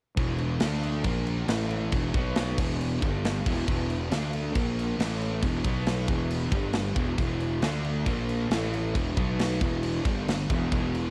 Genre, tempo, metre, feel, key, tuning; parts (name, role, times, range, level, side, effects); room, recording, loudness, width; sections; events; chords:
hard rock; 137 BPM; 4/4; straight; A4 = 442 Hz
sludgy distorted guitar; riff; 0.2-11.1 s; E2 to D4; -36 LUFS; equal; overdrive, cassette tape
sludgy distorted guitar; riff; 0.2-11.1 s; E2 to D4; -35 LUFS; equal; overdrive, cassette tape
fuzz fingered electric bass; bass; 0.2-11.1 s; E1 to D2; -33 LUFS; equal; overdrive
tight metal drum kit; drums; 0.2-11.0 s; crash cymbal, kick drum, snare drum; -32 LUFS; equal; cassette tape
little or no reverb; home recording on cassette; -28 LUFS; mono
0.2-11.1 A section
0.2 E5; 0.6 D5; 1.1 A#5; 1.5 A5; 1.9 E5; 2.1 B5; 2.6 E5; 3.0 G5; 3.5 E5; 4.1 D5; 4.6 A#5; 5.0 A5; 5.4 E5; 5.7 B5; 6.1 E5; 6.5 G5; 7.0 E5; 7.6 D5; 8.1 A#5; 8.5 A5; 9.0 E5; 9.2 B5; 9.6 E5; 10.1 G5; 10.5 E5